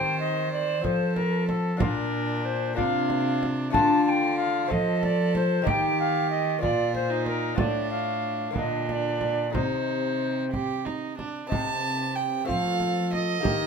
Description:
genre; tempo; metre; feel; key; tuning
classical, renaissance-style consort dance; 62 BPM (dotted quarters); 6/8; straight; C dorian; A4 = 442 Hz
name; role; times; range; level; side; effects
alto recorder; melody; 0.0-13.7 s; G4 to A5; -28 LUFS; left 1 dB; none
warm violin; second line; 0.0-13.7 s; D4 to A5; -30 LUFS; right 6 dB; none
lute; accompaniment; 0.0-13.7 s; A2 to D5; -31 LUFS; left 6 dB; none
rich cello; bass; 0.0-13.7 s; A2 to F3; -30 LUFS; equal; none
frame drum; percussion; 0.8-13.7 s; none; -30 LUFS; right 3 dB; none
room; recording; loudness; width
moderate stone room reverb, RT60 1.0 s; minimal, uncompressed stereo recording; -23 LUFS; side -6 dB against mid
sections
0.0-11.5 A section; 11.5-13.7 B section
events
none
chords
0.0 Cm/Eb; 0.8 F; 1.8 Bb; 3.8 Dm; 4.7 F; 5.7 Eb; 6.6 Bb; 7.6 Dm/A; 8.6 Bb; 9.5 Cm; 12.5 F

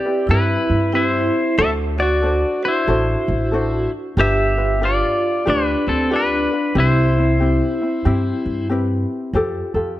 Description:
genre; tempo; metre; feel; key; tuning
Hawaiian; 93 BPM; 4/4; swing 63% on 8ths; C major; A4 = 440 Hz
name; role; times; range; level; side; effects
pedal steel guitar; melody; 0.0-8.7 s; C4 to E5; -20 LUFS; left 2 dB; none
vibraphone with medium hard mallets; second line; 0.0-8.7 s; C4 to A4; -24 LUFS; right 3 dB; none
ukulele; accompaniment; 0.0-10.0 s; C4 to C5; -23 LUFS; left 2 dB; none
upright bass; bass; 0.3-10.0 s; G1 to G2; -20 LUFS; right 1 dB; none
room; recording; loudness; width
light reverb, small room ambience; none; -16 LUFS; side -14 dB against mid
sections
0.0-9.3 A section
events
none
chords
0.0 Cmaj7; 1.6 D7; 4.2 G7; 6.8 Cmaj7; 9.3 Fadd9

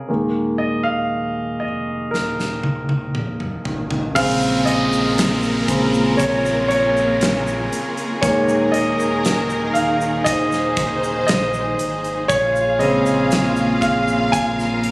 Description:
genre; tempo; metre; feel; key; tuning
pop ballad; 59 BPM; 4/4; straight; Bb minor; A4 = 439 Hz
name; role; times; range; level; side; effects
clear concert grand piano; accompaniment; 0.0-14.9 s; Db3 to Ab5; -19 LUFS; equal; none
sub bass with octave; bass; 0.1-14.9 s; Eb1 to Bb1; -30 LUFS; equal; none
huge arena drum kit; drums; 2.1-14.9 s; crash cymbal, hi-hat, kick drum, snare drum, toms; -24 LUFS; equal; none
warm studio string section; sustained chords; 4.1-14.9 s; Eb3 to F5; -22 LUFS; equal; none
egg shaker; percussion; 4.2-14.8 s; none; -36 LUFS; equal; none
downlifter; sound effects; 4.2-12.3 s; none; -29 LUFS; equal; none
room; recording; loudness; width
small room ambience; recorded on a phone in the room, studio reverb, compression; -16 LUFS; side -24 dB against mid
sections
0.0-4.2 A section; 4.2-14.9 B section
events
grand piano solo 0.0-4.2, 4.2-14.9; drum fill 2.1-4.2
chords
0.1 Ebsus4; 4.2 Bbm7; 8.2 Ebsus4; 12.3 Bbm7

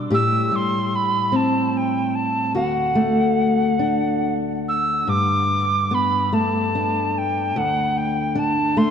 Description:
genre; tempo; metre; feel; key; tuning
celtic folk, Celtic slow air; 49 BPM (dotted quarters); 6/8; rubato; G major; A4 = 443 Hz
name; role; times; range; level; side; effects
fingerpicked steel-string acoustic guitar; accompaniment; 0.0-8.9 s; D2 to G4; -21 LUFS; left 1 dB; none
mellow mid whistle; melody; 0.1-8.9 s; F#5 to E6; -21 LUFS; right 1 dB; none
room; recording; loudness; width
wet cathedral reverb, RT60 4.5 s; dark, warm production; -18 LUFS; side -7 dB against mid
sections
0.0-5.1 A section; 5.1-8.9 B section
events
none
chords
0.1 Am7; 2.5 D; 5.1 Gadd9; 7.6 D

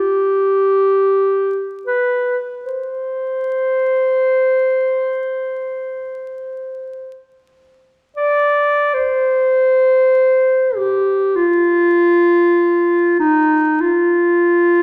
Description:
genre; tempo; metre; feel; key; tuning
classical, free, expressive piece for unaccompanied clarinet; free time; none; none; C minor; A4 = 438 Hz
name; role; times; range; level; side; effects
warm clarinet; solo; 0.0-14.8 s; Eb4 to D5; -16 LUFS; equal; none
room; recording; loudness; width
moderate recital hall reverb, RT60 1.5 s; vinyl crackle; -16 LUFS; mono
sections
0.0-8.9 A section; 8.9-14.8 B section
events
none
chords
none

